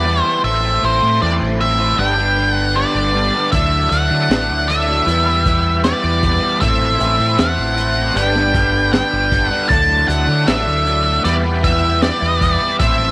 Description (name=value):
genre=psychedelic rock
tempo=78 BPM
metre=4/4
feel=straight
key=A dorian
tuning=A4 = 443 Hz
part: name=octave-fuzz lead guitar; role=melody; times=0.0-13.1 s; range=C5 to A5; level=-19 LUFS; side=equal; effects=distortion, slapback echo
part: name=pedal harmonium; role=sustained chords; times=0.0-13.1 s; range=D4 to C6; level=-28 LUFS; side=equal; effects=none
part: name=overdriven electric guitar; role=riff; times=0.0-13.1 s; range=G2 to E4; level=-24 LUFS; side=equal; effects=rotary speaker
part: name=deep dub fingered electric bass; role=bass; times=0.0-13.1 s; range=G1 to D3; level=-22 LUFS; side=equal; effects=tube saturation
part: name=crunchy breakbeat drum kit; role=drums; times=3.5-13.0 s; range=hi-hat, kick drum, snare drum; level=-23 LUFS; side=equal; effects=none
room=light reverb, small room ambience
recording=none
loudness=-16 LUFS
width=mono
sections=0.0-13.1 A section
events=none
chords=0.4 Am; 2.0 G; 3.5 Dadd9; 5.1 Em; 6.6 Am; 8.2 G; 9.7 Dadd9; 11.2 Em